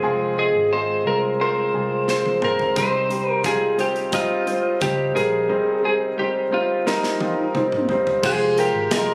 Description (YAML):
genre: piano-driven pop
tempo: 88 BPM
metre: 4/4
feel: straight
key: F minor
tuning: A4 = 443 Hz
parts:
  - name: lightly driven lead guitar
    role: melody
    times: 0.0-9.1 s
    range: Eb4 to C5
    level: -25 LUFS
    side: equal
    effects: none
  - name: clear grand piano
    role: accompaniment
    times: 0.0-9.1 s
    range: C3 to Eb5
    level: -24 LUFS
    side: equal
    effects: none
  - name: vintage muted fingered electric bass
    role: bass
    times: 0.0-9.1 s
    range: F1 to Db2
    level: -34 LUFS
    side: equal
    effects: none
  - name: modern studio drum kit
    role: drums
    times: 2.1-9.1 s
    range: crash cymbal, hi-hat, kick drum, snare drum, toms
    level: -31 LUFS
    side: equal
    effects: none
  - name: group handclap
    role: percussion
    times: 8.9-9.1 s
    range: none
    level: -36 LUFS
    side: equal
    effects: none
room: light reverb, small room ambience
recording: recorded on a phone in the room, studio reverb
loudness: -21 LUFS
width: mono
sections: 0.0-8.2 A section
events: drum fill 2.1-2.8, 6.9-8.2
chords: 0.0 Fm; 2.8 Cm; 8.2 Fmadd9